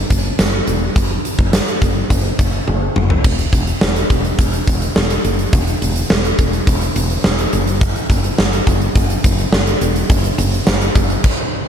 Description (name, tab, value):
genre	1980s-style pop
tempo	105 BPM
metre	4/4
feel	straight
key	unclear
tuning	A4 = 439 Hz
part	woody fretless electric bass	bass	0.0-11.2 s	E1 to F#1	-18 LUFS	equal	none
part	huge arena drum kit	drums	0.1-11.4 s	crash cymbal, hi-hat, kick drum, snare drum, tambourine, toms	-15 LUFS	equal	none
room	light reverb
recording	none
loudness	-13 LUFS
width	side -8 dB against mid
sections	0.0-3.2 A section; 3.2-11.7 B section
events	drum fill 2.7-3.2; stop 11.2-11.7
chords	none